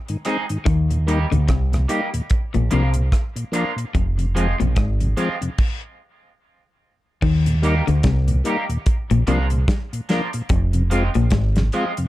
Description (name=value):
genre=roots reggae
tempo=73 BPM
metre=4/4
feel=swing 59% on 16ths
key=Eb major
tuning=A4 = 441 Hz
part: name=mellow tonewheel organ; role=accompaniment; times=0.1-12.1 s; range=Eb2 to F4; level=-24 LUFS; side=left 1 dB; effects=slow rotary speaker
part: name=damped 70s drum kit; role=drums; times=0.1-12.1 s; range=crash cymbal, hi-hat, kick drum, rim click, snare drum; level=-22 LUFS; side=equal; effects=none
part: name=electric guitar at the edge of break-up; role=accompaniment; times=0.3-11.9 s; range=F3 to Ab4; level=-27 LUFS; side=right 2 dB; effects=lush chorus, tape echo
part: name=electric guitar at the edge of break-up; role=riff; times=0.7-11.6 s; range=F2 to Eb3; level=-22 LUFS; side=left 4 dB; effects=none
part: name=deep dub fingered electric bass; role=bass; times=0.7-11.7 s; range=F1 to Eb2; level=-19 LUFS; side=equal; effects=none
room=light reverb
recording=dark, warm production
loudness=-18 LUFS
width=side -16 dB against mid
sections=0.0-7.2 A section; 7.2-12.1 B section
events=stop 5.6-7.2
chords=0.0 Ab; 0.7 Eb; 2.3 Bb; 3.9 Fm; 5.6 N.C.; 7.2 Eb; 8.9 Bb; 10.5 Fm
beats=| 0.66 1.49 2.31 3.13 | 3.95 4.77 5.59 6.41 | 7.23 8.05 8.87 9.69 | 10.51 11.33